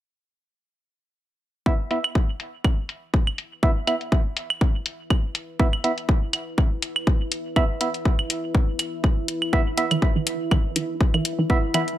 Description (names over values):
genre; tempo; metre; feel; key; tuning
minimal techno; 122 BPM; 4/4; swing 55% on 16ths; unclear; A4 = 439 Hz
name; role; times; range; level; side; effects
percussive organ stab; stabs; 1.7-11.8 s; B3 to E5; -26 LUFS; right 2 dB; chorus, dub echo
electronic kick drum; drums; 1.7-11.6 s; none; -20 LUFS; equal; none
deep dark ambient pad; texture; 4.0-12.0 s; E4 to E5; -32 LUFS; equal; chorus, built-in reverb, sidechain pumping
electronic hi-hat; drums; 1.9-12.0 s; none; -27 LUFS; left 3 dB; low-pass filter on hats, low-pass filter on room
claves; percussion; 2.0-11.9 s; none; -26 LUFS; right 4 dB; dub echo
resonant blip pluck; riff; 9.5-11.8 s; E3; -26 LUFS; right 2 dB; chorus, phaser, sidechain pumping, tape echo
room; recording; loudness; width
little or no reverb; none; -21 LUFS; side -13 dB against mid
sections
1.7-12.0 A section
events
fade-in on ambient pad 1.7-12.0; filter sweep on synth stab 1.7-12.0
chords
1.7 E5